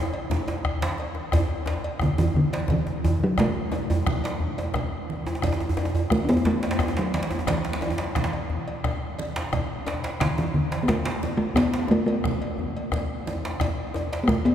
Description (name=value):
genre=west african traditional, West African drum ensemble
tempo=117 BPM (dotted quarters)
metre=12/8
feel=straight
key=unclear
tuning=A4 = 440 Hz
part: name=congas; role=percussion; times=0.1-14.4 s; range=none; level=-33 LUFS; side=right 3 dB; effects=none
part: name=cowbell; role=percussion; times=0.1-14.5 s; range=none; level=-36 LUFS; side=left 1 dB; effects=none
part: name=djembe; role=percussion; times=0.1-14.5 s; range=none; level=-34 LUFS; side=left 4 dB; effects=none
part: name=djembe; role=percussion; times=0.3-14.5 s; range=none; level=-28 LUFS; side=right 2 dB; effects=none
part: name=bombo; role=percussion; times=0.6-14.4 s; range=none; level=-32 LUFS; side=left 2 dB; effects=none
part: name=talking drum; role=melody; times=2.0-14.5 s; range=D3 to D4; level=-25 LUFS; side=equal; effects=none
room=wet cathedral reverb, RT60 4.9 s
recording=recorded in a church or concert hall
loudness=-23 LUFS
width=side -10 dB against mid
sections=0.0-1.3 A section; 1.3-14.5 B section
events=drum fill 0.0-1.3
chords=none